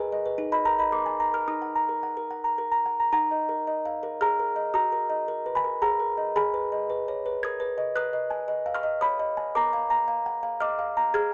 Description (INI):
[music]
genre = classical, lullaby for music box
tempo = 112 BPM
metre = 3/4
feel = straight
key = Eb minor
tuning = A4 = 441 Hz
[part]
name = music box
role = solo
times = 0.0-11.3 s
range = Eb4 to Ab6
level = -27 LUFS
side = equal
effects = none
[sound]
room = moderate studio reverb, RT60 0.6 s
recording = none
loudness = -27 LUFS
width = mono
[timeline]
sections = 0.0-3.1 A section; 3.1-11.3 B section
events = none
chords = 0.4 Eb5; 0.9 Bb7; 1.5 Ebm; 4.7 Ebm/Gb; 6.4 Abm; 8.0 Abm/Cb; 9.5 Bb